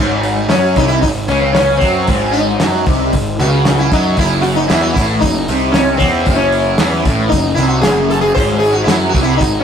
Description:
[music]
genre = psychedelic rock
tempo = 114 BPM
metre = 4/4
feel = straight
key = G# phrygian dominant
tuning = A4 = 440 Hz
[part]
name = thick fuzz guitar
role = riff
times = 0.0-9.6 s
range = F#2 to F#3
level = -17 LUFS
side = equal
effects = distortion, phaser
[part]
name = fuzz picked electric bass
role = bass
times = 0.0-9.6 s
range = F#1 to F#2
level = -17 LUFS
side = equal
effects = overdrive
[part]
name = cloth-damped thuddy drum kit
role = drums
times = 0.2-9.5 s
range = hi-hat, kick drum, snare drum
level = -18 LUFS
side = equal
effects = none
[part]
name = sitar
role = melody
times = 0.5-9.6 s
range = B#3 to B#4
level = -16 LUFS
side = left 1 dB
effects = none
[sound]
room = moderate stone room reverb, RT60 1.2 s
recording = rough rehearsal-room recording, tube saturation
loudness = -11 LUFS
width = side -8 dB against mid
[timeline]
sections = 0.0-9.6 A section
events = sitar solo 0.0-9.6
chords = 0.0 G#; 4.2 F#5; 8.4 G#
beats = 0.49 1.02 1.54 | 2.07 2.60 3.12 3.65 | 4.17 4.70 5.22 5.75 | 6.27 6.79 7.32 7.84 | 8.36 8.88 9.40

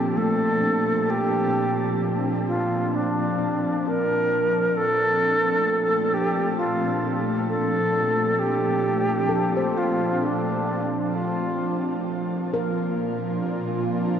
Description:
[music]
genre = ambient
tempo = 65 BPM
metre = 4/4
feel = straight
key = Bb major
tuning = A4 = 442 Hz
[part]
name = bright reedy alto flute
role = melody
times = 0.0-12.1 s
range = D4 to Bb4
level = -24 LUFS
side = right 1 dB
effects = shimmer reverb, diffuse ambient delay
[part]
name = airy breathy pad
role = sustained chords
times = 0.0-14.2 s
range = F3 to A5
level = -26 LUFS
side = equal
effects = chorus, shimmer reverb
[part]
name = handpan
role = arpeggios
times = 0.0-14.2 s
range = F3 to C5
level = -32 LUFS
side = left 3 dB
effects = shimmer reverb, diffuse ambient delay
[part]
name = warm studio cello section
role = bass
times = 0.0-14.2 s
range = Bb2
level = -33 LUFS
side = equal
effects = none
[part]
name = bowed-like drone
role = drone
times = 12.5-14.2 s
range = Bb2 to F4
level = -31 LUFS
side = right 1 dB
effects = built-in reverb
[sound]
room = wet cathedral reverb, RT60 6.0 s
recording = worn, warbling old tape, cassette tape, warbly pitch drift, nothing above 7.5 kHz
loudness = -21 LUFS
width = side -8 dB against mid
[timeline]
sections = 0.0-14.2 A section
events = fade-out on cello section 0.0-14.2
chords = 0.0 Bbmaj9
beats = 0.17 | 1.09 2.01 2.93 3.84 | 4.75 5.65 6.56 7.47 | 8.38 9.29 10.21 11.14 | 12.07 13.00 13.92

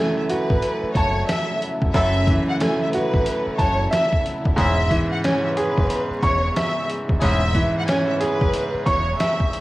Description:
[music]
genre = hip hop, boom-bap hip-hop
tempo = 91 BPM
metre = 4/4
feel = swing 62% on 16ths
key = E major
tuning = A4 = 438 Hz
[part]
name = warm studio violin section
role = melody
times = 0.0-9.5 s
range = B4 to G#5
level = -25 LUFS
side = left 1 dB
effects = cassette tape
[part]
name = bright upright piano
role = accompaniment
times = 0.0-9.6 s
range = F#2 to C#6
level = -22 LUFS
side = right 1 dB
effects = none
[part]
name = warm studio string section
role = sustained chords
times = 0.0-9.6 s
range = C#3 to E4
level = -33 LUFS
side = left 1 dB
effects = none
[part]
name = trip hop sampler-style drum kit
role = drums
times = 0.3-9.6 s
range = hi-hat, kick drum, snare drum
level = -24 LUFS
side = equal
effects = none
[part]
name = deep dub fingered electric bass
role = bass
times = 0.5-9.1 s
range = D#1 to G#1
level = -24 LUFS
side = equal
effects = none
[part]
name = warm horn section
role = stabs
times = 1.9-7.4 s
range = C#4 to A4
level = -29 LUFS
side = left 2 dB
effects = tape echo
[sound]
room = studio reverb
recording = home recording on cassette, vinyl crackle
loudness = -18 LUFS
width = side -18 dB against mid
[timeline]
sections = 0.0-9.6 A section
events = none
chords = 0.0 F#m7; 4.6 E6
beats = 0.62 1.28 | 1.94 2.60 3.26 3.92 | 4.58 5.24 5.90 6.56 | 7.22 7.88 8.54 9.20

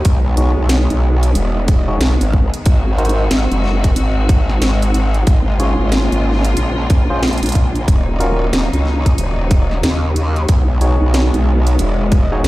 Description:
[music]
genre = glitch hop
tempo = 92 BPM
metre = 4/4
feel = swing 62% on 16ths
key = unclear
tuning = A4 = 440 Hz
[part]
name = bright symphonic string section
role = sustained chords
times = 0.0-12.5 s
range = Db3 to Gb4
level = -23 LUFS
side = left 2 dB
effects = sidechain pumping
[part]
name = growl bass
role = bass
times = 0.0-12.5 s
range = Eb1 to Eb2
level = -15 LUFS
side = equal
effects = chorus, tube saturation
[part]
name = drum and bass drum kit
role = drums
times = 0.0-12.5 s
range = hi-hat, snare drum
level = -21 LUFS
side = equal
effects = overdrive, studio reverb
[part]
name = electronic kick drum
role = drums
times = 0.1-12.3 s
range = none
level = -12 LUFS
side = equal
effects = overdrive, studio reverb
[part]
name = barky tine electric piano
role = stabs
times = 0.4-12.4 s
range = Db4 to Db5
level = -22 LUFS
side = right 1 dB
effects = sidechain pumping, low-pass filter, dub echo
[sound]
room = light reverb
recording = played on a big sound system in a bare room, large studio reverb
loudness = -12 LUFS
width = side -18 dB against mid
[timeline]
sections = 0.0-12.5 A section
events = filter sweep on tine electric piano 0.0-12.5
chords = 0.1 Emaj7; 2.7 Ab7; 5.3 Bbm7; 7.9 Ebm7; 10.5 Emaj7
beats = | 0.05 0.70 1.36 2.01 | 2.66 3.31 3.96 4.62 | 5.27 5.92 6.57 7.23 | 7.88 8.53 9.18 9.83 | 10.49 11.14 11.79 12.44

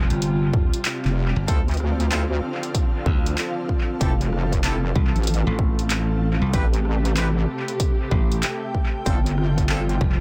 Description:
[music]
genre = glitch hop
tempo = 95 BPM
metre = 4/4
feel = swing 63% on 16ths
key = D minor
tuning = A4 = 439 Hz
[part]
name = warm studio string section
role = sustained chords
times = 0.0-10.2 s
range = C3 to G4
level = -32 LUFS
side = equal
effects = sidechain pumping
[part]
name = slap bass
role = bass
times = 0.0-10.2 s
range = F1 to D2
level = -25 LUFS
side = equal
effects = none
[part]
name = ethereal airy pad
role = texture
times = 0.1-10.2 s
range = C4 to G5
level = -35 LUFS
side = equal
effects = ensemble chorus, built-in reverb, sidechain pumping
[part]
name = dubstep drum kit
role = drums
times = 0.1-10.0 s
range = handclaps, hi-hat, rim click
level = -32 LUFS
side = equal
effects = dub echo
[part]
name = electronic kick drum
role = drums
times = 0.5-10.2 s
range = none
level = -24 LUFS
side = equal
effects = none
[part]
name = wobble bass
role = bass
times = 1.1-10.0 s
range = F1 to D2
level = -24 LUFS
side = equal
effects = chorus
[part]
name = bright horn section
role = stabs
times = 1.5-9.8 s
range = C4 to B4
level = -36 LUFS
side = equal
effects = sidechain pumping, dub echo
[sound]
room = little or no reverb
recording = echo-heavy mix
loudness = -22 LUFS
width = mono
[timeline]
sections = 0.0-10.2 A section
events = fade-in on ambient pad 0.0-10.2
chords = 0.0 G7sus4; 1.5 Dm7; 4.0 Fmaj7; 6.5 Am7; 9.1 G7sus4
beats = 0.22 0.85 | 1.48 2.11 2.75 3.38 | 4.01 4.64 5.27 5.90 | 6.54 7.17 7.80 8.43 | 9.06 9.69

